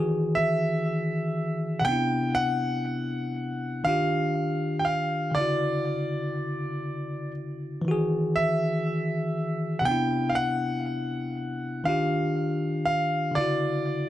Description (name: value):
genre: R&B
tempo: 60 BPM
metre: 4/4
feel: swing 58% on 16ths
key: unclear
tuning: A4 = 440 Hz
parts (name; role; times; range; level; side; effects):
- bell-like tine electric piano; accompaniment; 0.0-14.1 s; C3 to G#4; -27 LUFS; left 1 dB; none
- bright concert grand piano; melody; 0.4-14.1 s; D5 to G5; -28 LUFS; right 1 dB; tape echo
room: light reverb, studio ambience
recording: dark, warm production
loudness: -24 LUFS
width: side -13 dB against mid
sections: 0.0-14.1 A section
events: none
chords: 0.0 Emaj9; 1.9 Cmaj9; 3.9 D#maj9; 5.4 Dmaj9; 7.9 Emaj9; 9.9 Cmaj9; 11.9 D#maj9; 13.4 Dmaj9